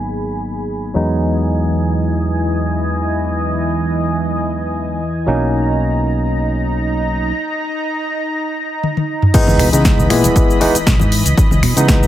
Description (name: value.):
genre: nu-disco, nu disco.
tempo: 118 BPM.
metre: 4/4.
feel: swing 54% on 16ths.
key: unclear.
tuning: A4 = 440 Hz.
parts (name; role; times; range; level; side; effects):
barky tine electric piano; accompaniment; 0.0-12.1 s; E3 to E4; -19 LUFS; equal; medium stereo tremolo, low-pass filter, digital delay.
lush unison pad; sustained chords; 0.0-12.1 s; E3 to B5; -21 LUFS; right 1 dB; chorus, sidechain pumping.
fingered electric bass; bass; 0.0-12.1 s; G#1 to C#3; -19 LUFS; equal; none.
house drum kit; drums; 8.8-12.1 s; crash cymbal, finger snaps, hi-hat, shaker, snare drum, toms; -18 LUFS; left 1 dB; small room ambience.
electronic kick drum; drums; 9.3-12.0 s; none; -14 LUFS; equal; small room ambience.
sub drop; sound effects; 9.4-11.4 s; none; -24 LUFS; equal; none.
congas; percussion; 9.5-12.1 s; none; -21 LUFS; left 2 dB; none.
room: light reverb.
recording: low-pass filter.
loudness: -14 LUFS.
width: side -12 dB against mid.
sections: 0.0-9.3 A section; 9.3-12.1 B section.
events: filter sweep on tine electric piano 0.0-9.3; filter sweep on analog synth pad 0.0-9.3; filter sweep 0.0-9.3; break 7.3-9.3; drum fill 8.8-9.3; drop 9.3-12.1; impact 9.3-11.4.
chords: 0.0 G#m7; 1.0 Emaj7; 5.3 Bmaj7; 9.3 C#m9.